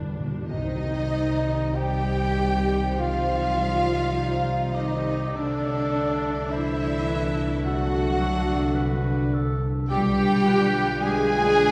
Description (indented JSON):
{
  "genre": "classical, slow romantic movement for symphony orchestra",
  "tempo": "46-54 BPM",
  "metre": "4/4",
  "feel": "rubato",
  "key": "C minor",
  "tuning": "A4 = 441 Hz",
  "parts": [
    { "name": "warm symphonic violin section", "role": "melody", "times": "0.0-11.7 s", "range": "D4 to Ab5", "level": "-35 LUFS", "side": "equal", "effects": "none" },
    { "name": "warm symphonic viola section", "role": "accompaniment", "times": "0.0-11.7 s", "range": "D4 to Ab4", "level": "-32 LUFS", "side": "equal", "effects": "none" },
    { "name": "concert harp", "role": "arpeggios", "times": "0.0-11.7 s", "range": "G2 to Eb5", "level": "-35 LUFS", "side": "equal", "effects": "none" },
    { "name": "rich symphonic cello section", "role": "bass", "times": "0.0-11.7 s", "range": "G2 to Ab3", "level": "-32 LUFS", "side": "equal", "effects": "none" },
    { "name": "rich symphonic double bass section", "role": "bass", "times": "0.0-11.7 s", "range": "G1 to C2", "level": "-31 LUFS", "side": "equal", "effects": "none" },
    { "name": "timpani", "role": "percussion", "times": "0.0-2.3 s", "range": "G2 to C3", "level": "-36 LUFS", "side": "equal", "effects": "none" },
    { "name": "mellow hollow silver concert flute", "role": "second line", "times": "0.5-11.7 s", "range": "D5 to Ab5", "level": "-35 LUFS", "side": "equal", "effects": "none" },
    { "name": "rich symphonic violin section", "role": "second line", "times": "0.5-11.7 s", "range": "D4 to Ab4", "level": "-38 LUFS", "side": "equal", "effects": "none" },
    { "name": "dark trombone section", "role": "sustained chords", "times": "0.5-11.7 s", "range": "D3 to A3", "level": "-36 LUFS", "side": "equal", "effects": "none" },
    { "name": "warm French horn section", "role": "sustained chords", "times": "0.5-11.7 s", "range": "C4 to C5", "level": "-35 LUFS", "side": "equal", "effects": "none" },
    { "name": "dark trumpet", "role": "stabs", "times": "0.5-11.7 s", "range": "D4 to Ab4", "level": "-34 LUFS", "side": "equal", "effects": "none" },
    { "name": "clear clarinet", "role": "second line", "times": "3.0-11.7 s", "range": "Eb4 to C5", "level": "-37 LUFS", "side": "equal", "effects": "none" }
  ],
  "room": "wet concert hall reverb, RT60 2.2 s",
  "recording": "heard from further back in the room",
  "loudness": "-24 LUFS",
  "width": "mono",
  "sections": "0.5-11.7 A section",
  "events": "timpani fill 0.0-0.5",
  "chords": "0.5 Cm; 5.3 D7/C; 9.9 G7/B"
}